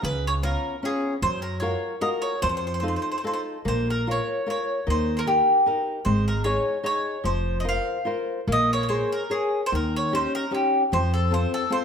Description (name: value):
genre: italian folk, Italian serenade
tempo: 149 BPM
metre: 3/4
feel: swing 55% on 8ths, rubato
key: Bb minor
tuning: A4 = 440 Hz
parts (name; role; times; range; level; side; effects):
- mandolin; melody; 0.0-11.8 s; G4 to F5; -25 LUFS; equal; none
- flamenco guitar; accompaniment; 0.0-11.8 s; Db3 to Db5; -27 LUFS; left 2 dB; none
- upright bass; bass; 0.0-11.4 s; F1 to Gb2; -26 LUFS; right 1 dB; none
room: wet recital hall reverb, RT60 1.2 s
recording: none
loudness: -22 LUFS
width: side -7 dB against mid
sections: 0.0-11.8 A section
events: none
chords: 0.0 Db7; 1.2 Gbmaj7; 2.4 F7; 3.7 Bbm; 4.9 Eb; 6.1 Absus4; 7.3 Fsus4; 8.5 Bbm7; 9.7 Eb7; 10.9 F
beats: | 0.03 0.43 0.82 | 1.22 1.62 2.02 | 2.42 2.83 3.24 | 3.65 4.06 4.47 | 4.87 5.27 5.67 | 6.07 6.46 6.86 | 7.26 7.66 8.07 | 8.48 8.89 9.30 | 9.71 10.11 10.52 | 10.91 11.31 11.71